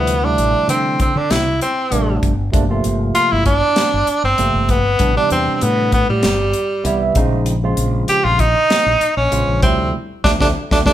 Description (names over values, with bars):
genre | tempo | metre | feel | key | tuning
electric jazz fusion | 97 BPM | 4/4 | swing 53% on 16ths | G dorian | A4 = 440 Hz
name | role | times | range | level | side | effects
bright tenor saxophone | melody | 0.0-10.9 s | G3 to G4 | -16 LUFS | right 1 dB | none
barky tine electric piano | accompaniment | 0.0-10.9 s | C3 to F5 | -21 LUFS | right 3 dB | medium stereo tremolo
mellow fretless electric bass | bass | 0.0-10.9 s | G1 to D3 | -20 LUFS | equal | none
crisp fusion drum kit | drums | 0.1-10.9 s | hi-hat, kick drum, snare drum | -19 LUFS | left 1 dB | none
room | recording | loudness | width
moderate large studio reverb, RT60 1.2 s | band playing live in one room | -14 LUFS | side -12 dB against mid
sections
0.0-10.9 A section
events
tine electric piano fill 6.5-7.5; band accent 9.9-10.9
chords
0.0 Dm11; 2.5 Gm11; 5.0 Am11; 7.2 Bbm11; 9.6 Dm11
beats
| 0.08 0.69 1.31 1.92 | 2.54 3.16 3.77 4.39 | 5.00 5.62 6.23 6.85 | 7.47 8.08 8.70 9.31 | 9.93 10.55